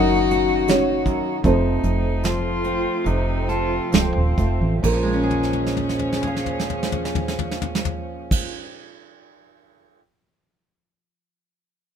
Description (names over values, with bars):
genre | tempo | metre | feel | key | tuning
acoustic folk-pop ballad | 64-81 BPM | 4/4 | straight | Bb harmonic minor | A4 = 440 Hz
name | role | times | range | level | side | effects
felt-muted upright piano | melody | 0.0-8.5 s | C4 to Eb5 | -24 LUFS | right 2 dB | none
warm cello | second line | 0.0-8.5 s | C4 to Gb4 | -27 LUFS | left 6 dB | none
fingerpicked steel-string acoustic guitar | accompaniment | 0.0-8.6 s | F2 to F5 | -25 LUFS | equal | none
warm chamber string section | sustained chords | 0.0-8.5 s | Bb2 to Eb4 | -31 LUFS | right 1 dB | none
fingered electric bass | bass | 0.0-8.5 s | C1 to Bb1 | -23 LUFS | right 1 dB | none
soft brush drum kit | drums | 0.3-10.0 s | crash cymbal, hi-hat, kick drum, snare drum, toms | -24 LUFS | right 1 dB | none
room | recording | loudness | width
light reverb | minimal, uncompressed stereo recording | -19 LUFS | side -8 dB against mid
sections
0.0-4.8 A section; 4.8-8.5 B section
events
slowing down 0.0-4.8; drum fill 5.3-8.3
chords
0.0 Ebm/Gb; 1.4 F; 4.8 Bbm7